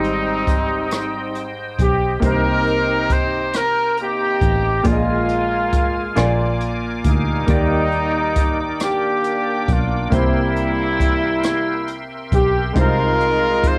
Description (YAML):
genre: slow gospel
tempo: 46 BPM (dotted quarters)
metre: 6/8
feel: straight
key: unclear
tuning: A4 = 440 Hz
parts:
  - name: mellow horn section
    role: melody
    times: 0.0-13.8 s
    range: G3 to C5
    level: -22 LUFS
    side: equal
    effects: cassette tape
  - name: bright concert grand piano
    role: accompaniment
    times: 0.0-13.8 s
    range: Ab2 to Ab5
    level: -27 LUFS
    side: equal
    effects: cassette tape
  - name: bright tonewheel organ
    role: sustained chords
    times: 0.0-13.8 s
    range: Ab3 to D6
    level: -32 LUFS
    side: equal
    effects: fast rotary speaker, overdrive, chorus vibrato, cassette tape
  - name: fingered electric bass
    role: bass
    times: 0.0-13.8 s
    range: Ab1 to Eb2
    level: -25 LUFS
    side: equal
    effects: none
  - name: jazz brush drum kit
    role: drums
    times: 0.0-13.8 s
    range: hi-hat, kick drum, rim click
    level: -24 LUFS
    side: equal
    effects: cassette tape
room: moderate small room reverb, RT60 0.5 s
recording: home recording on cassette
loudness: -19 LUFS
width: mono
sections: 0.0-13.8 A section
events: none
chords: 0.0 Abmaj7; 2.2 Cm7; 4.9 Bb7sus4; 6.2 Bb7; 7.5 Ebmaj7; 10.1 C7; 12.8 Fm7/C